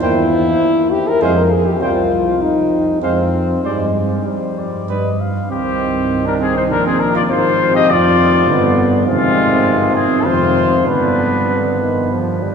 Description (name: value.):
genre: classical, brass quintet.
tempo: 100 BPM.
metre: 3/4.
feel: straight.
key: C minor.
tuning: A4 = 440 Hz.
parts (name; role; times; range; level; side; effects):
mellow trumpet; melody; 0.0-12.1 s; F4 to G5; -19 LUFS; left 4 dB; none.
clear flugelhorn; second line; 0.0-12.1 s; Ab3 to C5; -21 LUFS; right 3 dB; none.
clear French horn; accompaniment; 0.0-12.4 s; G3 to Bb4; -18 LUFS; left 2 dB; none.
clear trombone; accompaniment; 0.0-12.5 s; C3 to Bb3; -23 LUFS; right 2 dB; none.
mellow tuba; bass; 0.0-12.4 s; F1 to G2; -19 LUFS; right 2 dB; none.
room: wet cathedral reverb, RT60 6.3 s.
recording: recorded in a church or concert hall, small room ambience.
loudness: -13 LUFS.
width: side -6 dB against mid.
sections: 0.0-5.5 A section; 5.5-12.5 B section.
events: none.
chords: 0.0 C7/E (rootless); 1.2 Fm; 1.8 Cm; 3.0 Fm; 3.6 Gsus4; 4.9 G; 5.5 Cm; 7.3 Fm/Ab; 8.5 G; 9.1 Fm/Ab; 10.9 G.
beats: | 0.02 0.62 1.22 | 1.81 2.42 3.02 | 3.64 4.26 4.88 | 5.51 6.11 6.71 | 7.30 7.89 8.48 | 9.07 9.66 10.25 | 10.87 11.49 12.11.